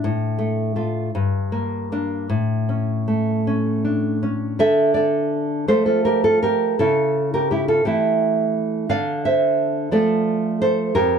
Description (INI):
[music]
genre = romantic piece for solo classical guitar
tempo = 50-59 BPM (dotted quarters)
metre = 6/8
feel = rubato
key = D minor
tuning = A4 = 440 Hz
[part]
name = nylon-string guitar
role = solo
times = 0.0-11.2 s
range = F2 to F5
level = -18 LUFS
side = right 1 dB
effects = none
[sound]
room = light reverb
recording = dark, warm production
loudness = -18 LUFS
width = side -6 dB against mid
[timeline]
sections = 0.0-4.6 A section; 4.6-11.2 B section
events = none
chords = 0.0 F/A; 1.1 Gm; 2.3 A; 4.6 Dm; 6.8 A7/C#; 8.9 Dm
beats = | 0.04 1.12 | 2.29 3.46 | 4.61 5.70 | 6.79 7.83 | 8.89 9.93 | 10.96